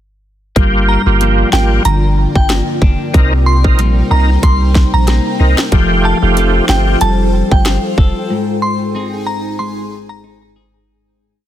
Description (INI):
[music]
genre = dancehall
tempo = 93 BPM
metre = 4/4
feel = swing 56% on 16ths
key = unclear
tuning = A4 = 440 Hz
[part]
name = overdriven tonewheel organ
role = accompaniment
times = 0.6-7.0 s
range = A3 to Bb4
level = -17 LUFS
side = right 1 dB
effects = chorus vibrato, slow rotary speaker, sidechain pumping
[part]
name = granular cloud pad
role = sustained chords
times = 1.4-10.9 s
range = Eb4 to Ab5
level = -23 LUFS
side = right 1 dB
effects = built-in reverb, sidechain pumping
[part]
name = clean electric guitar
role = arpeggios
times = 0.6-11.5 s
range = G2 to A4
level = -19 LUFS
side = left 3 dB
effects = spring reverb
[part]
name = punchy sub bass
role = bass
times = 0.6-8.1 s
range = F1 to C2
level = -13 LUFS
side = equal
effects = none
[part]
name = island pop drum kit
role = drums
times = 0.6-8.1 s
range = hi-hat, kick drum, rim click, snare drum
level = -13 LUFS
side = equal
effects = none
[part]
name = glassy synth bell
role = melody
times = 0.9-10.2 s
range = G5 to C6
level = -20 LUFS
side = right 1 dB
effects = chorus, tremolo, digital delay
[sound]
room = little or no reverb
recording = dense, heavily limited modern master, faint mains hum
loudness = -10 LUFS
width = side -12 dB against mid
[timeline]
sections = 0.6-10.9 chorus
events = break 8.3-10.9; fade-out 8.3-10.9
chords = 0.6 Gm7; 3.1 Cm7; 5.7 Fadd9; 8.3 Ab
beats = | 0.56 1.21 1.85 2.50 | 3.14 3.79 4.43 5.08 | 5.72 6.37 7.01 7.66 | 8.30 8.95 9.59 10.24